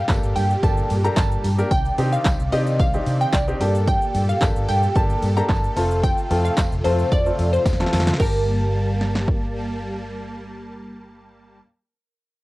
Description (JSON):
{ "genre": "dance-pop", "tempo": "111 BPM", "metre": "4/4", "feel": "straight", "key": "G minor", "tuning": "A4 = 440 Hz", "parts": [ { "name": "glassy wavetable pluck", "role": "melody", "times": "0.0-9.8 s", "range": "Bb4 to Bb5", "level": "-25 LUFS", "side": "equal", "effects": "chorus, cassette tape, tape echo" }, { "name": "supersaw chords", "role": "sustained chords", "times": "0.0-11.6 s", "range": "Bb2 to A5", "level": "-30 LUFS", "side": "right 1 dB", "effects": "sidechain pumping, cassette tape" }, { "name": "clear baby grand piano", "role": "accompaniment", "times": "0.1-11.6 s", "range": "A3 to A5", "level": "-26 LUFS", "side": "left 1 dB", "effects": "sidechain pumping, cassette tape" }, { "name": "vintage muted fingered electric bass", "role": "bass", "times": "0.1-11.6 s", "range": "F1 to C3", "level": "-23 LUFS", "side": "equal", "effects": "sidechain pumping" }, { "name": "punchy analog drum machine", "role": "drums", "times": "0.1-9.4 s", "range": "crash cymbal, handclaps, hi-hat, kick drum, shaker, snare drum", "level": "-22 LUFS", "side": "equal", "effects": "overdrive, cassette tape" }, { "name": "tambourine", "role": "percussion", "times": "0.1-8.5 s", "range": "none", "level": "-45 LUFS", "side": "right 2 dB", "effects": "none" } ], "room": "light reverb", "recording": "home recording on cassette", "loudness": "-18 LUFS", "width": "side -19 dB against mid", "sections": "0.0-8.2 A section; 8.2-12.4 B section", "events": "drop 0.0-8.2; drum fill 7.7-8.2", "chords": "0.0 Gmadd9; 1.7 Cmadd9; 3.6 Gmadd9; 5.8 F; 8.2 Gmadd9", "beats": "0.09 0.63 1.17 | 1.71 2.25 2.79 3.33 | 3.88 4.42 4.96 5.50 | 6.04 6.58 7.12 7.66 | 8.20 8.74 9.28 9.82 | 10.36 10.90 11.44" }